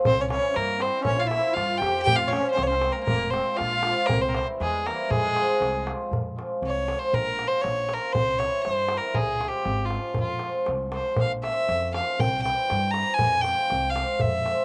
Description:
balkan folk, Balkan wedding band; 119 BPM; 2/4; swing 55% on 16ths; F harmonic minor; A4 = 442 Hz
musette accordion; second line; 0.0-5.9 s; Ab3 to G4; -34 LUFS; equal; slapback echo
cimbalom; accompaniment; 0.0-14.6 s; E3 to F4; -32 LUFS; equal; slapback echo
clear fiddle; melody; 0.1-14.6 s; F4 to Bb5; -27 LUFS; equal; slapback echo
upright bass; bass; 0.1-14.5 s; F1 to G2; -35 LUFS; equal
darbuka; percussion; 0.1-14.6 s; -33 LUFS; equal
little or no reverb; recorded outdoors, with no room sound, nothing above 11.0 kHz; -25 LUFS; mono
0.0-6.1 A section; 6.1-14.6 B section
fiddle solo 6.1-14.6
0.1 C; 1.1 Bbm; 2.1 Fm; 4.1 C; 5.1 Fm; 7.1 Bbm; 8.1 C; 9.2 Db; 10.2 Fm; 11.2 Bbm; 12.2 C; 13.2 Fm

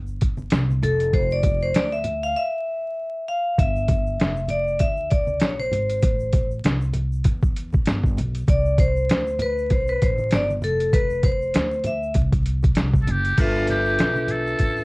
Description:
hip hop, jazz-hop; 98 BPM; 4/4; swing 58% on 16ths; A4 = 440 Hz
upright bass; bass; 0.0-14.8 s; F1 to E2; -25 LUFS; equal
egg shaker and congas; percussion; 0.1-14.8 s; -32 LUFS; right 1 dB
boom bap sampler-style drum kit; drums; 0.2-14.8 s; crash cymbal, hi-hat, kick drum, snare drum; -21 LUFS; equal; vintage 12-bit sampler grit
vibraphone with hard mallets; accompaniment; 0.8-14.8 s; D4 to F5; -23 LUFS; left 1 dB
trumpet with metal mute; melody; 13.0-14.8 s; F4 to A4; -24 LUFS; equal; slapback echo
light reverb; worn, warbling old tape, cassette tape, vinyl crackle, warbly pitch drift; -19 LUFS; side -25 dB against mid
0.0-13.4 A section; 13.4-14.8 B section
vibraphone solo 0.0-13.4; break 2.4-3.6
0.0 C5; 0.8 Fmaj7(no3); 3.6 G5; 5.4 Bbsus2; 6.0 Am; 7.9 G; 8.5 Csus2; 10.6 F5; 13.4 G13

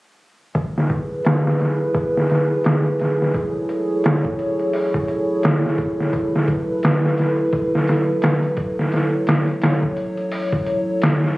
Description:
trip hop; 86 BPM; 4/4; swing 59% on 16ths; F# minor; A4 = 440 Hz
dark analog pad; sustained chords; 0.9-11.4 s; F#3 to C#5; -20 LUFS; equal; chorus
trip hop sampler-style drum kit; drums; 0.5-11.4 s; hi-hat, kick drum, snare drum; -19 LUFS; equal; low-pass filter on hats, low-pass filter on kick, low-pass filter on snare
light reverb, digital ambience; recorded on a phone in the room, club reverb; -17 LUFS; side -19 dB against mid
0.6-11.4 A section
0.6 F#m11; 6.1 Esus4/F#

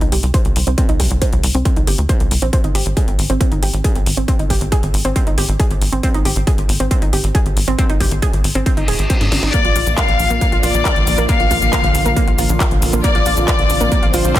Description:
uplifting trance; 137 BPM; 4/4; straight; A4 = 440 Hz
analog pluck; arpeggios; 0.0-14.4 s; Bb3 to C5; -23 LUFS; right 3 dB; chorus, sidechain pumping, tape echo
tight sequencer bass; bass; 0.0-14.3 s; Eb1 to Ab2; -18 LUFS; equal; sidechain pumping
techno drum kit; drums; 0.0-14.4 s; handclaps, hi-hat, shaker, snare drum; -23 LUFS; left 1 dB; sidechain pumping on hats, sidechain pumping on perc
electronic kick drum; drums; 0.3-14.4 s; -16 LUFS; equal; distortion
reverse cymbal; sound effects; 8.8-9.5 s; -23 LUFS; left 2 dB
warm chamber violin section; second line; 9.5-14.4 s; C5 to F5; -18 LUFS; left 5 dB; digital delay
lush unison pad; sustained chords; 9.9-14.4 s; D3 to F4; -23 LUFS; equal; chorus, sidechain pumping
little or no reverb; dense, heavily limited modern master; -13 LUFS; side -14 dB against mid
0.0-14.4 A section
filter sweep on synth pluck 0.0-14.4; reverse cymbal 8.8-9.5; drum fill 9.2-9.5
0.0 C5; 2.5 Ab; 9.5 Bb

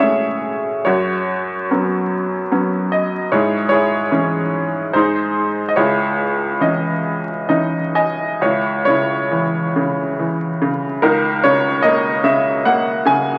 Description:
classical, lyrical solo piano; 64-76 BPM; 3/4; rubato; C# minor; A4 = 441 Hz
bright upright piano; solo; 0.0-13.4 s; C#2 to G#5; -18 LUFS; equal
moderate scoring stage reverb, RT60 2.1 s; very old 78 rpm record, vinyl crackle; -18 LUFS; mono
0.0-8.4 A section; 8.4-13.4 B section
upright piano fill 7.0-8.4
0.0 Amaj7; 0.9 F#sus4; 3.3 C#m/G#; 4.9 G#; 5.8 C#madd9; 8.4 C#m; 11.0 C#m69

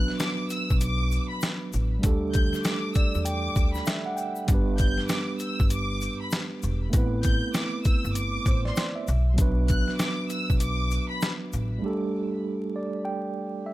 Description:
hip hop, boom-bap hip-hop; 98 BPM; 4/4; swing 61% on 16ths; A4 = 440 Hz
dark studio violin section; melody; 0.0-11.2 s; B5 to G6; -34 LUFS; left 1 dB; ping-pong delay
mellow tine electric piano; accompaniment; 0.0-13.7 s; F#3 to G5; -30 LUFS; right 2 dB; medium stereo tremolo
boom bap sampler-style drum kit; drums; 0.1-11.7 s; hi-hat, kick drum, shaker, snare drum; -25 LUFS; equal
egg shaker; percussion; 0.2-11.7 s; -44 LUFS; left 6 dB
upright bass; bass; 0.7-11.8 s; E1 to E2; -27 LUFS; equal
small room ambience; vinyl crackle; -24 LUFS; side -16 dB against mid
0.0-13.7 A section
break 11.8-13.7
0.0 Bm; 2.0 Dsus4; 4.5 G; 6.9 Amadd9; 9.1 Bm; 11.8 Dsus4

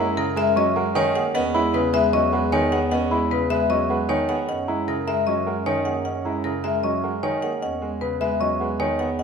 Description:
classical, minimalist pattern music; 153 BPM; 4/4; straight; E lydian; A4 = 440 Hz
marimba with hard mallets; melody; 0.0-9.2 s; A#4 to F#5; -24 LUFS; left 5 dB
bright baby grand piano; accompaniment; 0.0-9.2 s; C#3 to B3; -26 LUFS; right 4 dB
celesta; arpeggios; 0.0-9.2 s; D#5 to C#6; -28 LUFS; equal
warm grand piano; arpeggios; 0.0-9.2 s; C#4 to B4; -28 LUFS; right 6 dB
mellow bass clarinet; bass; 0.0-9.2 s; E2 to F#2; -28 LUFS; equal
wet recital hall reverb, RT60 1.6 s; minimal, uncompressed stereo recording; -20 LUFS; side -6 dB against mid
0.0-9.2 A section
0.0 F#9; 1.3 Emaj9; 4.5 F#9; 7.6 Emaj9

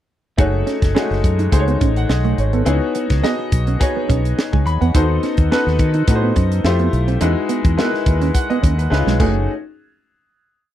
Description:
polished 1980s jazz-funk pop; 106 BPM; 4/4; swing 54% on 16ths; F# dorian; A4 = 440 Hz
clear concert grand piano; accompaniment; 0.4-9.5 s; G#3 to B5; -20 LUFS; left 3 dB; wide subtle chorus
mellow electric guitar; riff; 0.4-9.4 s; G#3 to D#4; -22 LUFS; right 8 dB; ensemble chorus
mellow fretless electric bass; bass; 0.4-9.5 s; F#1 to D#3; -18 LUFS; equal
tight funk drum kit; drums; 0.4-9.3 s; crash cymbal, hi-hat, kick drum, snare drum; -18 LUFS; equal
little or no reverb; dry, close 1970s-style studio recording; -15 LUFS; side -12 dB against mid
0.4-9.5 verse; 9.5-10.7 final hit
drum fill 8.9-9.5
0.4 F#m69; 2.7 C#7sus4; 4.9 B7b9/D#; 6.6 Fmaj9; 7.2 Emaj9; 8.9 C#7; 9.2 F#m69; 9.5 N.C.

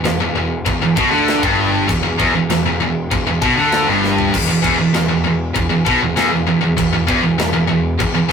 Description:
heavy metal; 98 BPM; 4/4; straight; E minor; A4 = 441 Hz
heavy high-gain guitar; riff; 0.0-8.3 s; E2 to D3; -18 LUFS; left 2 dB; distortion
overdriven electric guitar; riff; 0.0-8.3 s; E2 to D3; -24 LUFS; equal
scooped high-gain guitar; riff; 0.0-8.3 s; E2 to D3; -18 LUFS; right 4 dB; distortion
fuzz picked electric bass; bass; 0.0-8.3 s; E1 to D2; -25 LUFS; equal; overdrive
tight metal drum kit; drums; 0.0-8.1 s; china cymbal, crash cymbal, kick drum, snare drum, toms; -22 LUFS; left 1 dB
moderate booth ambience, RT60 0.2 s; rough rehearsal-room recording, warm saturation; -13 LUFS; side -6 dB against mid
0.0-8.3 A section
drum fill 4.0-4.3
0.0 Em

